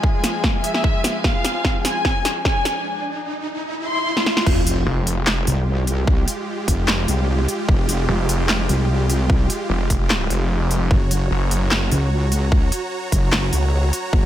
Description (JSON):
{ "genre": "heavy wobble dubstep", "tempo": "149 BPM", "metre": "4/4", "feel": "half-time", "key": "F harmonic minor", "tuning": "A4 = 438 Hz", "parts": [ { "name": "supersaw chords", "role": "sustained chords", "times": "0.0-14.3 s", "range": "Ab3 to Bb5", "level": "-27 LUFS", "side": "right 2 dB", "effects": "sidechain pumping" }, { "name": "electronic kick drum", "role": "drums", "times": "0.0-14.2 s", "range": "none", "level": "-19 LUFS", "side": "equal", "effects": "none" }, { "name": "riser and sub drop", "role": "sound effects", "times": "1.0-6.1 s", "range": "none", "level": "-28 LUFS", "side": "equal", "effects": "none" }, { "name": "warm chamber string section", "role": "texture", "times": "0.0-2.9 s", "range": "F3 to Ab5", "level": "-29 LUFS", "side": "left 4 dB", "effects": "sidechain pumping" }, { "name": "big-room dance drum kit", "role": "drums", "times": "0.2-14.0 s", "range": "crash cymbal, handclaps, hi-hat, snare drum", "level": "-22 LUFS", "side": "equal", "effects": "none" }, { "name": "dark studio violin section", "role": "melody", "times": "0.6-4.4 s", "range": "E5 to C6", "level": "-25 LUFS", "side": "left 1 dB", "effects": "dub echo" }, { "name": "wobble bass", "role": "bass", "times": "4.5-14.3 s", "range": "F1 to Db2", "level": "-19 LUFS", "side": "equal", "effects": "chorus, overdrive" }, { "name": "snarling distorted saw bass", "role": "bass", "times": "4.9-5.5, 8.1-11.9 s", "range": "F1 to Gb1", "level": "-20 LUFS", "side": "equal", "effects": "distortion, overdrive" } ], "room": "little or no reverb", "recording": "none", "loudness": "-17 LUFS", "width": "side -12 dB against mid", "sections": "0.0-4.5 A section; 4.5-14.3 B section", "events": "build-up 0.0-4.5; drum fill 0.0-2.9, 4.2-4.5; riser 1.0-4.5; break 2.9-4.5; drop 4.5-14.3; impact 4.5-6.1", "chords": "0.0 Fm; 4.5 Fmadd9; 10.9 Gb", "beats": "0.04 0.44 0.84 | 1.24 1.65 2.05 2.45 | 2.85 3.26 3.66 4.06 | 4.46 4.87 5.27 5.67 | 6.08 6.48 6.88 7.28 | 7.69 8.09 8.49 8.89 | 9.30 9.70 10.10 10.51 | 10.91 11.31 11.71 12.12 | 12.52 12.92 13.32 13.73 | 14.13" }